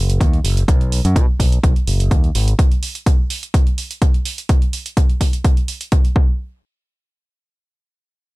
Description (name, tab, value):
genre	filtered disco house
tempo	126 BPM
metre	4/4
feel	straight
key	B major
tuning	A4 = 441 Hz
part	modern bright fingered electric bass	bass	0.0-2.5 s	F#1 to B2	-16 LUFS	equal	sidechain pumping, low-pass filter
part	electronic hi-hat	drums	0.1-6.1 s	none	-27 LUFS	right 5 dB	sidechain pumping on hats
part	electronic kick drum	drums	0.2-6.3 s	none	-14 LUFS	equal	none
room	little or no reverb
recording	none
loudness	-14 LUFS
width	side -22 dB against mid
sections	0.0-6.4 A section; 6.4-8.4 B section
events	none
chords	none